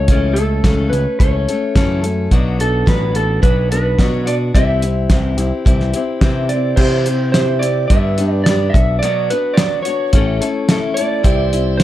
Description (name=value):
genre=folk rock and heartland rock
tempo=108 BPM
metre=4/4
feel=straight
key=unclear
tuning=A4 = 438 Hz
part: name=electric slide guitar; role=melody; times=0.0-11.8 s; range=A4 to E5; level=-20 LUFS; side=right 2 dB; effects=slapback echo
part: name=picked steel-string acoustic guitar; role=accompaniment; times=0.0-11.8 s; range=G2 to A4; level=-21 LUFS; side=left 4 dB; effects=none
part: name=picked electric bass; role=bass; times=0.0-11.8 s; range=A1 to C3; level=-18 LUFS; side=equal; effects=none
part: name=cloth-damped thuddy drum kit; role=drums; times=0.1-11.8 s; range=crash cymbal, hi-hat, kick drum, snare drum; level=-15 LUFS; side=equal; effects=none
part: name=tonewheel organ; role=sustained chords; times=11.3-11.8 s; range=C4 to C5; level=-28 LUFS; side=right 2 dB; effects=slow rotary speaker
room=light reverb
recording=dark, warm production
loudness=-13 LUFS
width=side -13 dB against mid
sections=0.0-6.8 A section; 6.8-11.8 B section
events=none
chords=0.0 A/C#; 2.3 Bm; 4.5 C; 7.9 G; 8.7 Bm; 10.1 A; 11.2 C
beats=| 0.08 0.64 1.20 1.75 | 2.31 2.87 3.43 3.99 | 4.55 5.11 5.67 6.22 | 6.78 7.34 7.90 8.46 | 9.02 9.57 10.13 10.69 | 11.25 11.80